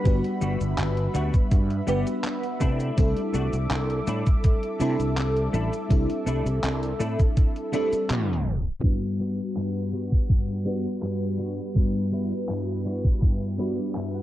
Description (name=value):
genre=vaporwave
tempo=82 BPM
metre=4/4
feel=straight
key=G major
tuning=A4 = 440 Hz
part: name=FM electric piano with soft pad layer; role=accompaniment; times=0.0-14.2 s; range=G3 to F#5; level=-28 LUFS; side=equal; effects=phaser, ensemble chorus, analog delay
part: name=lush unison pad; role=sustained chords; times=0.0-14.2 s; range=G3 to D6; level=-35 LUFS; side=equal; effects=chorus, phaser
part: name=sustaining fretless electric bass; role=bass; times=0.1-8.6 s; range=G1 to C3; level=-26 LUFS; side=equal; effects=tube saturation, wide subtle chorus
part: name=detuned 8-bit digital drum machine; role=drums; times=0.1-14.1 s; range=cabasa, handclaps, hi-hat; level=-35 LUFS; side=equal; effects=low-pass filter on hats, vintage 12-bit sampler grit, low-pass filter on perc, low-pass filter on snare
part: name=electronic kick drum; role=drums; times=0.1-13.4 s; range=none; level=-21 LUFS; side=equal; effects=vintage 12-bit sampler grit
part: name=clean electric guitar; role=riff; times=0.4-14.2 s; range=G2 to F#5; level=-32 LUFS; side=left 1 dB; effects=ensemble chorus, low-pass filter, analog delay
room=light reverb, digital ambience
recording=dark, warm production, cassette tape, low-pass filter, tape stop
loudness=-22 LUFS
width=side -14 dB against mid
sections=0.0-8.8 A section; 8.8-14.2 B section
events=band accent 8.1-8.5; tape stop 8.1-8.8; filter sweep 8.8-14.2; clean electric guitar fill 13.2-14.2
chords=0.0 Gmaj7; 2.6 C69; 8.8 Gmaj7